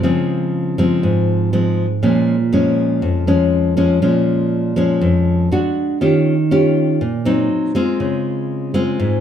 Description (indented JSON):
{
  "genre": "bossa nova",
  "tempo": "121 BPM",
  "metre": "4/4",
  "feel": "straight",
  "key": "Db major",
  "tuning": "A4 = 440 Hz",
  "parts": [
    { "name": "nylon-string guitar", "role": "solo", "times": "0.0-9.2 s", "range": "F2 to G4", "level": "-14 LUFS", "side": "equal", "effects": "none" }
  ],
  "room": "moderate large studio reverb, RT60 1.1 s",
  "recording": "band playing live in one room",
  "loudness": "-14 LUFS",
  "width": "side -9 dB against mid",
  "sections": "0.0-9.2 A section",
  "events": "none",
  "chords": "0.0 Dbmaj7; 2.0 Bbm7; 5.5 D; 6.0 Eb9; 7.5 Ab7; 8.0 Dbmaj7"
}